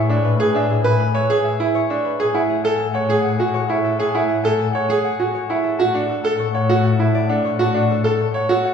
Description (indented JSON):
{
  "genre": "classical, minimalist pattern music",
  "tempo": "100 BPM",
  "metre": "3/4",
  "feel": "straight",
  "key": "A major",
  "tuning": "A4 = 439 Hz",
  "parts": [
    { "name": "concert harp", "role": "melody", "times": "0.0-8.7 s", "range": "G#4 to A5", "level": "-24 LUFS", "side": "left 7 dB", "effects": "none" },
    { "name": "clear symphonic double bass section", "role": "bass", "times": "0.0-8.7 s", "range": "A2", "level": "-22 LUFS", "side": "left 3 dB", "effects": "none" },
    { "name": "bright baby grand piano", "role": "arpeggios", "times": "0.1-8.7 s", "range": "D4 to C#5", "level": "-19 LUFS", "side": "right 3 dB", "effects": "none" }
  ],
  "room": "wet recital hall reverb, RT60 1.4 s",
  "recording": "recorded in a church or concert hall, nothing above 10.6 kHz",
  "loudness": "-16 LUFS",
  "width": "side -7 dB against mid",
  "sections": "0.0-8.7 A section",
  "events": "none",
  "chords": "0.0 E7/A; 2.2 A6; 5.8 Dmaj7/A"
}